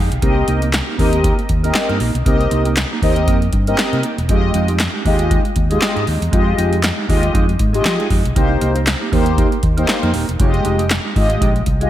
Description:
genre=early-eighties boogie funk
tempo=118 BPM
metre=4/4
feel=swing 56% on 16ths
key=F minor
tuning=A4 = 442 Hz
part: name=mellow electric guitar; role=riff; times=0.0-11.9 s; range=Ab3 to Bb4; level=-23 LUFS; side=right 5 dB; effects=lush chorus, slapback echo
part: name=fingered electric bass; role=bass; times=0.0-11.9 s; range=Eb1 to F3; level=-19 LUFS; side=equal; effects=none
part: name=electro analog drum machine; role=drums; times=0.1-11.9 s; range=handclaps, hi-hat, kick drum, snare drum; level=-18 LUFS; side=equal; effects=none
part: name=mellow synth brass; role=accompaniment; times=0.2-11.9 s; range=Ab3 to Eb5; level=-20 LUFS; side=left 1 dB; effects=chorus, phaser, slapback echo
room=light reverb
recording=none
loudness=-14 LUFS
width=side -12 dB against mid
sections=0.0-11.9 A section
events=none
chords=0.2 Cm7; 4.3 Fm9; 8.4 Cm7; 10.4 Fm9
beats=| 0.23 0.74 1.25 1.75 | 2.26 2.77 3.28 3.79 | 4.30 4.80 5.31 5.82 | 6.33 6.84 7.35 7.86 | 8.36 8.87 9.38 9.89 | 10.40 10.91 11.41

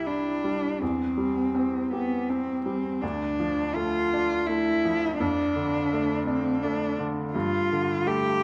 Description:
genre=classical, romantic duo for cello and grand piano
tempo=83 BPM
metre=3/4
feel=rubato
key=C major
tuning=A4 = 440 Hz
part: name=warm cello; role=melody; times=0.0-8.4 s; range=B3 to G4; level=-28 LUFS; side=equal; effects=none
part: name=bright baby grand piano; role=accompaniment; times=0.0-8.4 s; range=C2 to G4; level=-32 LUFS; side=equal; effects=none
room=moderate scoring stage reverb, RT60 1.6 s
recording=none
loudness=-27 LUFS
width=mono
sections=0.0-8.4 A section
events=none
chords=0.0 C; 0.8 C/E; 3.0 Dm; 5.2 Dm/F; 7.3 G7sus2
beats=0.07 | 0.81 1.55 2.29 | 3.02 3.76 4.48 | 5.20 5.91 6.63 | 7.35 8.07

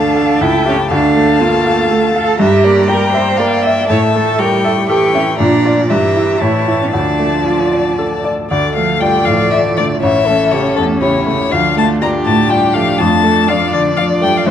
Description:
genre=quick classical-period movement for piano quintet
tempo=120 BPM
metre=3/4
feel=straight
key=D minor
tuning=A4 = 441 Hz
part: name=warm violin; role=melody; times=0.0-14.5 s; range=A4 to C#6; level=-18 LUFS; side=left 7 dB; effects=none
part: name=rich cello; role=second line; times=0.0-14.5 s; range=A2 to D5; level=-17 LUFS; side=right 4 dB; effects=none
part: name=warm violin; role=second line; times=0.0-14.5 s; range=E4 to G5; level=-19 LUFS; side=left 4 dB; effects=none
part: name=bright baby grand piano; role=accompaniment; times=0.0-14.5 s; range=A1 to F5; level=-16 LUFS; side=right 1 dB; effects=none
part: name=warm viola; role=accompaniment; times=0.0-14.5 s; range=E3 to D4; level=-20 LUFS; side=right 1 dB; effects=none
room=moderate concert hall reverb, RT60 2.0 s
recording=close, detailed microphones, vinyl crackle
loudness=-11 LUFS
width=side -9 dB against mid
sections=0.0-8.5 A section; 8.5-14.5 B section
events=none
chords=0.4 A7/C#; 0.9 Dm; 2.4 Em7b5/G; 3.9 A7; 5.4 Bb; 5.9 Edim/G; 6.4 A; 6.9 Dm; 10.0 A7; 11.5 Dm; 13.0 Dm/F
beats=0.41 | 0.90 1.40 1.90 | 2.39 2.88 3.38 | 3.89 4.39 4.89 | 5.39 5.90 6.41 | 6.93 7.46 7.99 | 8.51 9.02 9.52 | 10.02 10.52 11.01 | 11.51 12.01 12.50 | 13.00 13.49 13.98 | 14.48

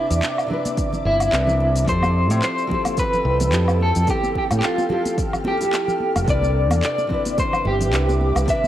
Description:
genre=sunset chillout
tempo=109 BPM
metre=4/4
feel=swing 56% on 16ths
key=C major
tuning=A4 = 442 Hz
part: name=electric guitar at the edge of break-up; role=melody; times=0.0-8.7 s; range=E4 to E5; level=-22 LUFS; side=equal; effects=tremolo, cassette tape, analog delay
part: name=nylon-string guitar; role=accompaniment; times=0.0-8.7 s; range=C3 to B4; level=-27 LUFS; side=right 1 dB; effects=auto-pan, cassette tape
part: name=ethereal airy pad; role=sustained chords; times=0.0-8.7 s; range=A4 to F6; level=-30 LUFS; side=equal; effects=ensemble chorus, built-in reverb, tremolo, cassette tape
part: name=modern bright fingered electric bass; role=bass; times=0.1-8.5 s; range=F1 to A2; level=-20 LUFS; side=equal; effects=none
part: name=smooth R&B drum kit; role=drums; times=0.1-8.7 s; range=handclaps, hi-hat, shaker, woodblock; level=-27 LUFS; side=equal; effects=cassette tape
part: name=congas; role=percussion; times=0.1-8.7 s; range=none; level=-31 LUFS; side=right 1 dB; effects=none
part: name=electronic kick drum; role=drums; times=0.8-8.6 s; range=none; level=-26 LUFS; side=equal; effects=overdrive, cassette tape
room=light reverb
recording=home recording on cassette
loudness=-17 LUFS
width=side -12 dB against mid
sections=0.0-8.7 A section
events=none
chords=0.0 Cmaj9; 1.9 Fmaj9; 6.3 Cmaj9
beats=0.22 0.77 1.32 | 1.88 2.43 2.98 3.53 | 4.08 4.63 5.18 5.73 | 6.28 6.83 7.38 7.93 | 8.48

